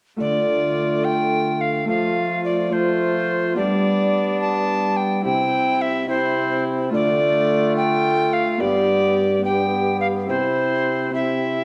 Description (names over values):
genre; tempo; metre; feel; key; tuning
classical, renaissance-style consort dance; 71 BPM (dotted quarters); 6/8; straight; D dorian; A4 = 440 Hz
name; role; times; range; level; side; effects
bright alto recorder; melody; 0.2-11.6 s; C5 to A5; -24 LUFS; equal; none
warm viola; second line; 0.2-11.6 s; D4 to G4; -27 LUFS; equal; none
Celtic harp; accompaniment; 0.2-11.6 s; G2 to A4; -30 LUFS; equal; none
bright trombone; accompaniment; 0.2-11.6 s; A3 to C4; -30 LUFS; equal; none
mellow trombone; bass; 0.2-11.6 s; G2 to G3; -28 LUFS; equal; none
room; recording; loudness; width
wet recital hall reverb, RT60 1.3 s; none; -20 LUFS; mono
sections
0.2-11.6 A section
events
none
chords
0.2 Dm; 1.9 F; 3.6 G; 5.2 C; 6.9 Dm; 8.6 G; 10.3 C